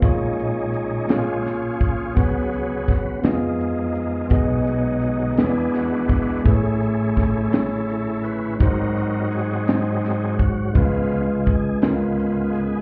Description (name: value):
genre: slow gospel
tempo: 56 BPM (dotted quarters)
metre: 6/8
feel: straight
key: unclear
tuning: A4 = 440 Hz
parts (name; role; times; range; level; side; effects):
- barky tine electric piano; accompaniment; 0.0-12.8 s; A1 to Eb5; -24 LUFS; equal; plate reverb
- bright tonewheel organ; sustained chords; 0.0-12.8 s; G#2 to B4; -28 LUFS; equal; slow rotary speaker, overdrive, chorus vibrato, plate reverb
- crisp fusion drum kit; drums; 0.0-12.7 s; hi-hat, kick drum, snare drum; -22 LUFS; equal; none
room: light reverb, studio ambience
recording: heard muffled through a wall, club reverb, EQ, nothing above 7.7 kHz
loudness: -21 LUFS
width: mono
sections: 0.0-12.8 A section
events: tonewheel organ solo 0.0-12.8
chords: 0.0 A#m7; 2.2 C#7sus4; 3.2 Fm7b5; 4.3 B6; 5.4 E7; 6.5 Amaj7; 8.6 G#7; 10.8 C#7